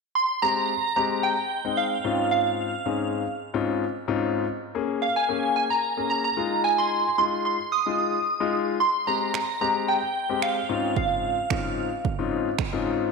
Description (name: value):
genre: dance-pop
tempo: 111 BPM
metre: 4/4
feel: straight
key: unclear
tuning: A4 = 439 Hz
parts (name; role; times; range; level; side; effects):
- shimmering bell with halo; melody; 0.2-11.7 s; F5 to Eb6; -24 LUFS; right 2 dB; ensemble chorus, phaser, slapback echo
- warm concert grand piano; accompaniment; 0.4-13.1 s; Ab2 to Ab4; -27 LUFS; left 6 dB; sidechain pumping
- house drum kit; drums; 9.3-12.7 s; finger snaps, kick drum; -30 LUFS; right 6 dB; none
room: wet echo chamber reverb, RT60 1.8 s, digital ambience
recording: 1960s-style stereo with parts hard left and right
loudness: -22 LUFS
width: side -4 dB against mid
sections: 0.2-13.1 A section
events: none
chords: 0.2 Abmaj7; 2.0 Dbmaj9/Ab; 4.5 Bbm7; 6.4 Fm7; 8.8 Abmaj7; 10.7 Dbmaj9/Ab